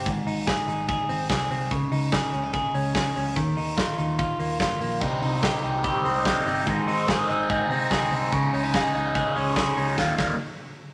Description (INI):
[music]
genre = jangly indie pop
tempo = 145 BPM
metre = 4/4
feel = straight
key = unclear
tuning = A4 = 440 Hz
[part]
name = direct-recorded clean electric guitar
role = arpeggios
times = 0.0-10.5 s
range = Ab2 to Ab4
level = -29 LUFS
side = equal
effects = vibrato effect
[part]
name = vintage muted picked electric bass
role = bass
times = 0.0-10.3 s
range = G1 to C3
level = -34 LUFS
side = equal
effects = none
[part]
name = big rock drum kit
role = drums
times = 0.1-10.3 s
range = crash cymbal, hi-hat, kick drum, snare drum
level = -31 LUFS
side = equal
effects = none
[part]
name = crunchy overdriven guitar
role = accompaniment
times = 5.0-10.3 s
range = Ab2 to F4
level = -27 LUFS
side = equal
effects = phaser
[sound]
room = moderate club reverb, RT60 0.9 s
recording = none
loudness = -25 LUFS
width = mono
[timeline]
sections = 0.0-10.9 A section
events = band accent 10.0-10.9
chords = 0.1 Ab; 1.7 Dbsus2; 3.4 Ebsus2; 5.0 Cm; 6.7 Ab; 8.3 Dbsus2; 10.0 Ebadd9